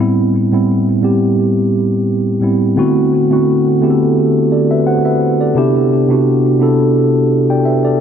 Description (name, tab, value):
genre	R&B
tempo	86 BPM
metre	4/4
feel	swing 54% on 16ths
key	A dorian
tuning	A4 = 441 Hz
part	mellow tine electric piano	solo	0.0-8.0 s	A2 to G5	-11 LUFS	equal	slow stereo tremolo, ping-pong delay
room	wet plate reverb, RT60 3.6 s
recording	dreamy mix soaked in reverb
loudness	-11 LUFS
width	side -8 dB against mid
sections	0.0-8.0 A section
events	none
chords	0.0 Am9; 2.8 D13; 5.6 Cmaj9